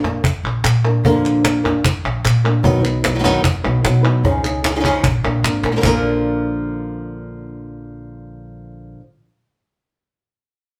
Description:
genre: flamenco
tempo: 150 BPM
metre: 4/4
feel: straight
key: Bb phrygian dominant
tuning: A4 = 440 Hz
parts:
  - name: flamenco guitar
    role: melody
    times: 0.0-9.0 s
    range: Bb2 to B4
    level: -22 LUFS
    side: equal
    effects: none
  - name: upright bass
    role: bass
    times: 0.0-8.9 s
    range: Ab1 to B2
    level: -23 LUFS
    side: equal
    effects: none
  - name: cajon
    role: percussion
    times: 0.0-5.9 s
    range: none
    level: -23 LUFS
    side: equal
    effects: none
  - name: palmas hand claps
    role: percussion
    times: 0.0-5.9 s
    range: none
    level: -26 LUFS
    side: equal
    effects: none
room: wet studio reverb, RT60 0.8 s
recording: band playing live in one room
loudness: -17 LUFS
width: mono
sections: 0.0-5.8 A section; 5.8-9.0 B section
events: drum fill 5.6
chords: 0.0 Bb; 2.6 B; 4.2 Dbadd9; 5.0 Bb

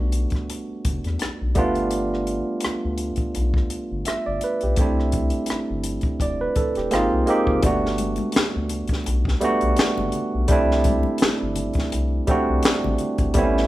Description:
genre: R&B, neo-soul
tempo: 84 BPM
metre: 4/4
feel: swing 56% on 16ths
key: unclear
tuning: A4 = 440 Hz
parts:
  - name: barky tine electric piano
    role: accompaniment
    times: 0.0-13.7 s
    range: G3 to E5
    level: -22 LUFS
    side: right 2 dB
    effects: overdrive
  - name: round analog bass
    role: bass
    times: 0.0-13.7 s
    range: E1 to E2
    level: -25 LUFS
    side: left 1 dB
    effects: none
  - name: compact cocktail drum kit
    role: drums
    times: 0.1-13.6 s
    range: handclaps, hi-hat, kick drum, rim click, snare drum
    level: -23 LUFS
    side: left 1 dB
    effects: none
  - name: congas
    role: percussion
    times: 8.0-13.5 s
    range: none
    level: -34 LUFS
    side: left 6 dB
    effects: none
room: light reverb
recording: band playing live in one room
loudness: -20 LUFS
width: side -16 dB against mid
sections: 0.0-7.6 A section; 7.6-13.7 B section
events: none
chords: 0.0 Em11 (rootless); 1.6 G7; 4.8 C69; 6.9 G#69; 7.6 Gmaj7; 10.5 C6

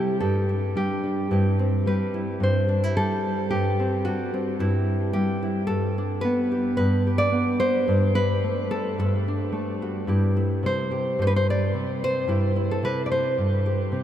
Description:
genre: folk, solo fingerstyle acoustic guitar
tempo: 110 BPM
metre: 4/4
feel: straight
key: unclear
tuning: A4 = 440 Hz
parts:
  - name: nylon-string guitar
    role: solo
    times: 0.0-14.0 s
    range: G2 to D5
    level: -21 LUFS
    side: equal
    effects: none
room: wet huge ambient reverb, RT60 7.8 s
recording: in a vast, echoing space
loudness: -21 LUFS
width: side -11 dB against mid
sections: 0.0-1.3 A section; 1.3-14.0 B section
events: none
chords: 0.2 Gsus2; 1.3 C/G; 5.7 Gadd9; 7.9 D5/G; 10.1 C/G

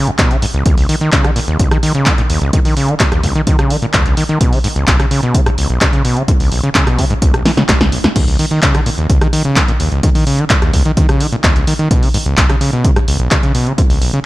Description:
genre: acid house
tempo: 128 BPM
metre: 4/4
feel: straight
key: unclear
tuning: A4 = 440 Hz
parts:
  - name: overdriven acid bass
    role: riff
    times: 0.0-14.2 s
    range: Cb2 to Fb3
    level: -15 LUFS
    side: equal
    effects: distortion, tube saturation, sidechain pumping, digital delay
  - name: punchy analog drum machine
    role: drums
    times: 0.1-14.2 s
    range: crash cymbal, handclaps, hi-hat, rim click, snare drum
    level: -17 LUFS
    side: equal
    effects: small room ambience
  - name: electronic kick drum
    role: drums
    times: 0.2-13.9 s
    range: none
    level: -14 LUFS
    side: equal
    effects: small room ambience
room: digital ambience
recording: none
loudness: -11 LUFS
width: side -18 dB against mid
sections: 0.0-14.3 A section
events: drum fill 7.5-8.2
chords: none

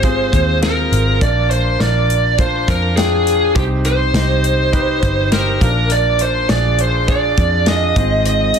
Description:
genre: piano-driven pop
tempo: 102 BPM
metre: 4/4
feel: straight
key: unclear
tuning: A4 = 440 Hz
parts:
  - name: bluesy overdriven lead guitar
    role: melody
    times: 0.0-8.6 s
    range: G4 to Eb5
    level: -16 LUFS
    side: right 1 dB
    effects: distortion
  - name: clear concert grand piano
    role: accompaniment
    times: 0.0-8.6 s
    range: Ab2 to G5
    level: -22 LUFS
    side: equal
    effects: none
  - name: vintage muted picked electric bass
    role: bass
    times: 0.0-8.5 s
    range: G1 to F2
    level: -18 LUFS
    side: equal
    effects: none
  - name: modern studio drum kit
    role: drums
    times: 0.0-8.6 s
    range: hi-hat, kick drum, snare drum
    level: -19 LUFS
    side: equal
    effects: none
room: light reverb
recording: dense, heavily limited modern master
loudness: -13 LUFS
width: side -7 dB against mid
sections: 0.0-8.6 A section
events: none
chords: 0.0 Ab6; 1.2 Bb; 3.6 Cm; 5.6 Bb; 8.0 Ab6

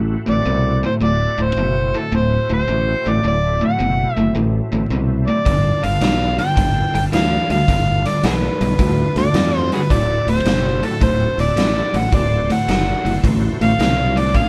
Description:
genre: blues rock power trio and southern rock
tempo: 108 BPM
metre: 4/4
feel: swing 67% on 8ths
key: D mixolydian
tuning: A4 = 440 Hz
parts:
  - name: overdriven tonewheel organ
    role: sustained chords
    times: 0.0-14.5 s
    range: E3 to C5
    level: -32 LUFS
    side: equal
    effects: slow rotary speaker, chorus vibrato
  - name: overdriven electric guitar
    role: riff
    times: 0.0-14.5 s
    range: D2 to E3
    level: -23 LUFS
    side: equal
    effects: spring reverb
  - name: modern bright fingered electric bass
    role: bass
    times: 0.0-14.5 s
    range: D1 to F2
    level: -23 LUFS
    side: equal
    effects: none
  - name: overdriven harmonica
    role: melody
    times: 0.3-14.5 s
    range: F#4 to G5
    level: -23 LUFS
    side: equal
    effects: none
  - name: raw garage drum kit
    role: drums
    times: 5.5-14.5 s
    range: hi-hat, kick drum, snare drum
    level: -23 LUFS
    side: equal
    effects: none
room: moderate small room reverb, RT60 0.6 s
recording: band playing live in one room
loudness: -17 LUFS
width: mono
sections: 0.0-14.5 A section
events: none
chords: 0.0 D7; 5.5 G7; 9.9 D7

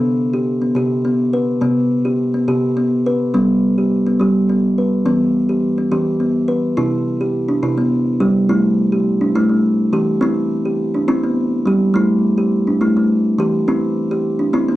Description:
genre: world meditative, meditative tuned percussion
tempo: 70 BPM (dotted quarters)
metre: 6/8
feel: straight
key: unclear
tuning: A4 = 436 Hz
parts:
  - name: kalimba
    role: solo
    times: 0.0-14.8 s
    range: C3 to B4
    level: -14 LUFS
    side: equal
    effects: none
room: moderate studio reverb, RT60 0.5 s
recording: worn, warbling old tape, cassette tape, warbly pitch drift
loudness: -14 LUFS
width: side -16 dB against mid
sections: 0.0-6.8 A section; 6.8-14.8 B section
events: none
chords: 0.0 C5; 3.3 G; 5.1 Em; 6.8 C; 8.5 A5; 10.2 C; 11.9 A5; 13.7 C

